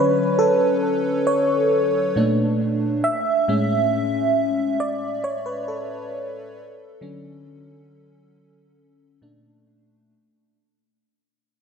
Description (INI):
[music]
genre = R&B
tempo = 68 BPM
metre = 4/4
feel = straight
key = unclear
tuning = A4 = 443 Hz
[part]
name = FM electric piano with soft pad layer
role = solo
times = 0.0-10.1 s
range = A2 to E5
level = -19 LUFS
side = equal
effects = chorus, analog delay
[sound]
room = wet plate reverb, RT60 2.8 s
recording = dreamy mix soaked in reverb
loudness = -19 LUFS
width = side -6 dB against mid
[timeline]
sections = 0.0-10.1 A section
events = fade-out 0.0-10.1; FM electric piano solo 0.0-10.1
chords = 0.0 Dmaj7; 2.2 Bbmaj7; 3.0 Amaj7; 6.6 Dmaj7; 9.2 Bbmaj7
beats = 0.39 1.27 2.15 | 3.04 3.92 4.80 5.68 | 6.57 7.45 8.33 9.21